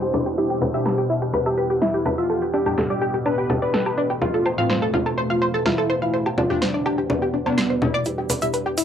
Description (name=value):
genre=melodic techno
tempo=125 BPM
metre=4/4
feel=straight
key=E phrygian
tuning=A4 = 440 Hz
part: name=wide unison lead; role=melody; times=0.0-8.7 s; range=B3 to C5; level=-25 LUFS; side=equal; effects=tape echo
part: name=deep dark ambient pad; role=sustained chords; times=0.0-8.8 s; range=G3 to F5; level=-31 LUFS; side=right 3 dB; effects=chorus, built-in reverb
part: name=analog pluck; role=arpeggios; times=0.0-8.8 s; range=D4 to C6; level=-24 LUFS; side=equal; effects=wide subtle chorus, tape echo
part: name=overtone-sweeping drone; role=drone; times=0.0-8.8 s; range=E2 to B2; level=-31 LUFS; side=equal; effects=chorus, built-in reverb
part: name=synth brass stab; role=stabs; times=0.1-8.8 s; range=E2 to E4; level=-30 LUFS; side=left 5 dB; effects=chorus, tape echo
part: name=deep house drum kit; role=drums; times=0.1-8.8 s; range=congas, hi-hat, snare drum, woodblock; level=-25 LUFS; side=equal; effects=overdrive, cassette tape
part: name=egg shaker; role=percussion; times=8.0-8.8 s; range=none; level=-30 LUFS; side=right 13 dB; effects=none
room=moderate small room reverb, RT60 0.5 s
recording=home recording on cassette, low-pass filter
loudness=-19 LUFS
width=side -9 dB against mid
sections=0.0-8.1 A section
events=filter sweep on synth stab 0.0-8.1; filter sweep 0.0-8.1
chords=0.4 Em; 2.3 Gsus2/E; 4.2 F/E; 6.1 Csus2/E; 8.1 Em